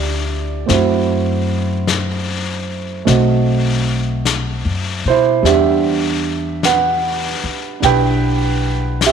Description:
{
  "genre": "jazz ballad",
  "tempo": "50 BPM",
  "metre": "4/4",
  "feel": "swing 68% on 8ths",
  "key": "unclear",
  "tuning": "A4 = 441 Hz",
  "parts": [
    { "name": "warm concert grand piano", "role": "accompaniment", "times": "0.0-9.1 s", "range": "G3 to G5", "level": "-17 LUFS", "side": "right 7 dB", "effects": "none" },
    { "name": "upright bass", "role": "bass", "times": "0.0-9.1 s", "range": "B1 to B2", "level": "-19 LUFS", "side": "left 2 dB", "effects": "none" },
    { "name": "vintage brush drum kit", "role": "drums", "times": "0.7-9.1 s", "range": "brushed snare drum, hi-hat, snare drum", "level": "-22 LUFS", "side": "left 8 dB", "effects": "none" }
  ],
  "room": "moderate echo chamber reverb, RT60 2.2 s",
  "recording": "1960s-style stereo with parts hard left and right",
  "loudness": "-14 LUFS",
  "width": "side -7 dB against mid",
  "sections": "0.0-9.1 A section",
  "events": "none",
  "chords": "0.0 G6; 0.7 F#m7b5; 3.1 B7b9; 5.4 Em7"
}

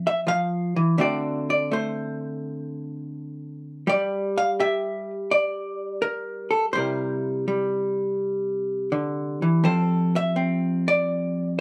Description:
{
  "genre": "solo jazz",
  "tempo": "83 BPM",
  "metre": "4/4",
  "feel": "swing 69% on 8ths",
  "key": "D minor",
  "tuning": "A4 = 441 Hz",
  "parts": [
    { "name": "vintage hollow-body jazz guitar", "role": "solo", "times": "0.0-11.6 s", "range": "C3 to F5", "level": "-25 LUFS", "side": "equal", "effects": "none" }
  ],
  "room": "moderate studio ambience, RT60 0.4 s",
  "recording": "band playing live in one room",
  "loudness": "-25 LUFS",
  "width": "mono",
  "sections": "0.0-11.6 A section",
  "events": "none",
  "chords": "0.0 Fmaj7(no3); 1.0 D7; 3.9 N.C.; 6.8 C7; 9.6 Fmaj9"
}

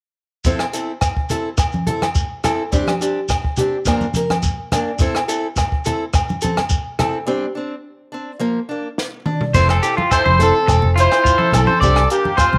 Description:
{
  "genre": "highlife guitar band",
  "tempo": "106 BPM",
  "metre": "4/4",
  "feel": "straight",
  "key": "F major",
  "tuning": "A4 = 440 Hz",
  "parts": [
    { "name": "compact cocktail drum kit", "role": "drums", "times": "0.4-12.5 s", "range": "crash cymbal, hi-hat, kick drum, rim click, snare drum, toms", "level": "-24 LUFS", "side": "equal", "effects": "none" },
    { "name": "shekere", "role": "percussion", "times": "0.4-12.5 s", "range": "none", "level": "-27 LUFS", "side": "equal", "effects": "none" },
    { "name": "picked steel-string acoustic guitar", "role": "accompaniment", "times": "0.5-12.3 s", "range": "E3 to Bb4", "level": "-25 LUFS", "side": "equal", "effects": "none" },
    { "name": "agogo bells", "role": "percussion", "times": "0.6-12.5 s", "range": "none", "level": "-27 LUFS", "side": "equal", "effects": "none" },
    { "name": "congas", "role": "percussion", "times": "1.3-12.6 s", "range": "none", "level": "-26 LUFS", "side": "equal", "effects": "none" },
    { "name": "electric guitar at the edge of break-up", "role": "arpeggios", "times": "9.5-12.6 s", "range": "F4 to D5", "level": "-20 LUFS", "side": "equal", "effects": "slapback echo" },
    { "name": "fingered electric bass", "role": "bass", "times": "9.5-12.6 s", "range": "E1 to C2", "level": "-18 LUFS", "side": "equal", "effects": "none" },
    { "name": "warm horn section", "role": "melody", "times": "10.1-12.6 s", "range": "Bb3 to C5", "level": "-19 LUFS", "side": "equal", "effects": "none" }
  ],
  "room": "light reverb, studio ambience",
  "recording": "none",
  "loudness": "-18 LUFS",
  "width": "mono",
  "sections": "0.5-9.5 A section; 9.5-12.6 B section",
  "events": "break 7.3-9.5; drum fill 9.0-9.5",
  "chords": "0.5 Fmaj7 (rootless); 2.7 Csus2; 3.9 Bb; 5.0 Fmaj7 (rootless); 7.3 Csus2; 8.4 Bb; 9.5 Fmaj7; 11.8 Csus2"
}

